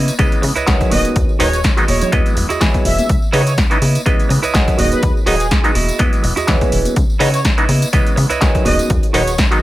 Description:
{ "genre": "filtered disco house", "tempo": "124 BPM", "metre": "4/4", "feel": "swing 55% on 16ths", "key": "C# minor", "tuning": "A4 = 438 Hz", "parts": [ { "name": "semi-hollow electric guitar", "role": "riff", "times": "0.0-9.6 s", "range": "E4 to F#5", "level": "-22 LUFS", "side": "right 5 dB", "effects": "sidechain pumping" }, { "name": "plucky analog bass", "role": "bass", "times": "0.0-9.5 s", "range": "D#1 to C#3", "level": "-18 LUFS", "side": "equal", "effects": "sidechain pumping" }, { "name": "punchy analog drum machine", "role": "drums", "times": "0.1-9.6 s", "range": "hi-hat, snare drum", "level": "-21 LUFS", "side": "equal", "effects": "overdrive, sidechain pumping on hats" }, { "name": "tambourine and congas", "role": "percussion", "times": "0.1-9.6 s", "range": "none", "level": "-26 LUFS", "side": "equal", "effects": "sidechain pumping on perc" }, { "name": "bright clav", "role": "accompaniment", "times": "0.2-9.6 s", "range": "C#3 to D#5", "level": "-20 LUFS", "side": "equal", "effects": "phaser, sidechain pumping" }, { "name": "electronic kick drum", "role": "drums", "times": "0.2-9.5 s", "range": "none", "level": "-16 LUFS", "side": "equal", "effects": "overdrive" }, { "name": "analog synth brass", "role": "melody", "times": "0.9-9.3 s", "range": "G#4 to E5", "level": "-23 LUFS", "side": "equal", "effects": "chorus, cassette tape, sidechain pumping, dub echo" } ], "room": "little or no reverb", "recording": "none", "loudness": "-12 LUFS", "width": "side -16 dB against mid", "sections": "0.0-9.6 A section", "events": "none", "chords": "0.0 C#m9; 0.9 G#m7/D#; 1.9 Emaj9; 3.1 C#m9; 4.8 G#m7/D#; 5.8 Emaj9; 7.0 C#m9; 8.7 G#m7/D#", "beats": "0.19 0.67 | 1.16 1.64 2.13 2.61 | 3.09 3.58 4.06 4.54 | 5.03 5.51 6.00 6.48 | 6.96 7.45 7.93 8.42 | 8.90 9.38" }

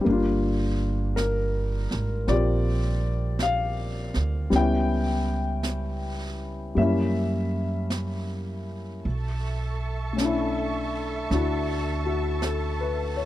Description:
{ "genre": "jazz ballad", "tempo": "54 BPM", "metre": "4/4", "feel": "swing 68% on 8ths", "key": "unclear", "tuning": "A4 = 440 Hz", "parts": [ { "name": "warm concert grand piano", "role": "accompaniment", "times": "0.0-13.3 s", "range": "G3 to G5", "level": "-26 LUFS", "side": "left 3 dB", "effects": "none" }, { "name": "upright bass", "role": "bass", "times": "0.0-13.3 s", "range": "G1 to F#2", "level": "-27 LUFS", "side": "right 1 dB", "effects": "none" }, { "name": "jazz brush drum kit", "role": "drums", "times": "0.1-13.3 s", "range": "brushed snare drum, hi-hat, snare drum", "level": "-37 LUFS", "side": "right 2 dB", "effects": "none" }, { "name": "warm symphonic string section", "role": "sustained chords", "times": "9.1-13.3 s", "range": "A4 to C#6", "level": "-33 LUFS", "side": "right 3 dB", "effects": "none" } ], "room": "small room ambience", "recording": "dry, close 1970s-style studio recording", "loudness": "-24 LUFS", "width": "side -14 dB against mid", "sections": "0.0-13.3 A section", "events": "none", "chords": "0.1 Gm7; 4.5 C#m7b5; 6.8 F#7b9; 9.0 Bm11", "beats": "| 0.05 1.17 2.28 3.40 | 4.52 5.64 6.77 7.91 | 9.05 10.18 11.30 12.42" }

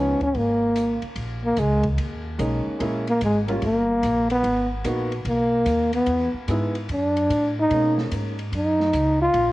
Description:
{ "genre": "jazz, small-group swing and bop", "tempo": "147 BPM", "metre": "4/4", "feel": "swing 66% on 8ths", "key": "unclear", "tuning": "A4 = 440 Hz", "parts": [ { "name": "breathy trombone", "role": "melody", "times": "0.0-9.5 s", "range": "G#3 to E#4", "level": "-21 LUFS", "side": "equal", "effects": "cassette tape" }, { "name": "warm baby grand piano", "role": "accompaniment", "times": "0.0-8.3 s", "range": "F3 to F#4", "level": "-27 LUFS", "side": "equal", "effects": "cassette tape" }, { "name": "upright bass", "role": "bass", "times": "0.0-9.5 s", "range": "G1 to B2", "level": "-27 LUFS", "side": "equal", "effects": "none" }, { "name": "open jazz drum kit", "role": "drums", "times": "0.2-9.5 s", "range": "hi-hat, kick drum, ride cymbal, snare drum", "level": "-35 LUFS", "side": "equal", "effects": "cassette tape" } ], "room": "light reverb, studio ambience", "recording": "home recording on cassette", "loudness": "-20 LUFS", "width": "side -17 dB against mid", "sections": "0.0-1.2 A section; 1.2-9.5 B section", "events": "none", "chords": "0.0 Db9; 1.2 Bmaj13/A#; 2.8 A#m7b5; 3.6 Gm; 4.4 G#m9; 6.1 Emaj7; 6.9 D/F#; 7.7 Bmaj13", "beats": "0.35 0.76 | 1.17 1.58 1.99 2.39 | 2.80 3.21 3.62 4.03 | 4.44 4.84 5.25 5.66 | 6.07 6.48 6.89 7.29 | 7.70 8.11 8.52 8.93 | 9.34" }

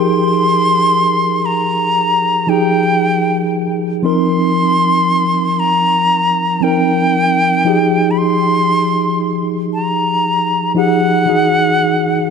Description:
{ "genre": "R&B", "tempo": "58 BPM", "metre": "4/4", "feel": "straight", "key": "F minor", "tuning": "A4 = 440 Hz", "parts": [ { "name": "silver concert flute", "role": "melody", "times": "0.0-12.3 s", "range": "Gb5 to C6", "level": "-15 LUFS", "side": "left 1 dB", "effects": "ping-pong delay" }, { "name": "mellow tine electric piano", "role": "accompaniment", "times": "0.0-12.3 s", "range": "E3 to Bb4", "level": "-15 LUFS", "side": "equal", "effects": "medium stereo tremolo" } ], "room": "light reverb, studio reverb", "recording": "nothing above 10.9 kHz", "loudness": "-12 LUFS", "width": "side -6 dB against mid", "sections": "0.0-12.3 A section", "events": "none", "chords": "0.0 Fm9; 4.0 Cm7/F; 7.7 Fm9; 11.3 Emaj9", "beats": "0.93 1.96 3.00 | 4.03 5.07 6.10 7.13 | 8.17 9.20 10.24 11.27" }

